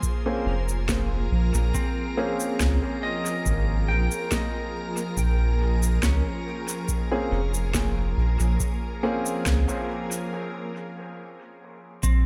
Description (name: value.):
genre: ambient dub.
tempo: 70 BPM.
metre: 4/4.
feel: straight.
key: Bb dorian.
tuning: A4 = 440 Hz.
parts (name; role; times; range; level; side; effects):
soft additive organ-like pad; sustained chords; 0.0-12.3 s; F3 to C5; -35 LUFS; equal; ensemble chorus, built-in reverb.
pedal steel guitar; arpeggios; 0.0-12.3 s; C4 to Bb5; -37 LUFS; equal; dub echo.
dark upright piano; stabs; 0.0-10.3 s; Bb3 to Ab4; -33 LUFS; equal; dub echo.
electronic kick drum; drums; 0.0-12.2 s; none; -32 LUFS; equal; none.
electronic shaker and snare drum; drums; 0.0-12.2 s; none; -34 LUFS; equal; overdrive, dub echo.
soft dub sub bass; bass; 0.5-12.3 s; F1 to Db2; -25 LUFS; equal; none.
room: light reverb.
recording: none.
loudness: -25 LUFS.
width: mono.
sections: 0.0-12.0 A section.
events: break 10.3-12.0.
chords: 0.0 Bbm9.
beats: 0.03 0.89 | 1.75 2.60 3.46 4.32 | 5.17 6.03 6.89 7.75 | 8.60 9.46 10.32 11.17 | 12.03.